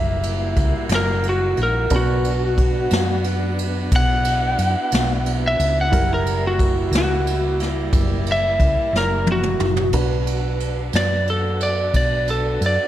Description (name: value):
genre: slow blues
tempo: 60 BPM (dotted quarters)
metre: 12/8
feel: straight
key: B minor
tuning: A4 = 440 Hz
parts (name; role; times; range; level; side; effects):
- lightly driven lead guitar; melody; 0.0-12.9 s; F#4 to F#5; -22 LUFS; equal; slapback echo
- warm upright piano; accompaniment; 0.0-12.9 s; G3 to B4; -30 LUFS; right 5 dB; slapback echo
- tonewheel organ; sustained chords; 0.0-12.9 s; G3 to B4; -31 LUFS; equal; chorus vibrato, slow rotary speaker
- warm saxophone section; sustained chords; 0.0-12.9 s; G3 to F#4; -32 LUFS; equal; none
- hollow-body short-scale fingered electric bass; bass; 0.0-12.8 s; F#1 to F#2; -22 LUFS; equal; none
- jazz brush drum kit; drums; 0.2-12.8 s; kick drum, ride cymbal, snare drum, toms; -23 LUFS; equal; none
room: moderate concert hall reverb, RT60 2.0 s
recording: big arena sound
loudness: -17 LUFS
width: side -12 dB against mid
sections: 0.0-9.9 A section; 9.9-12.9 B section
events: lead electric guitar solo 0.0-9.9; drum fill 8.9-9.9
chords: 0.0 F#7b9; 1.9 Bm; 5.9 F#7b9; 9.9 Bm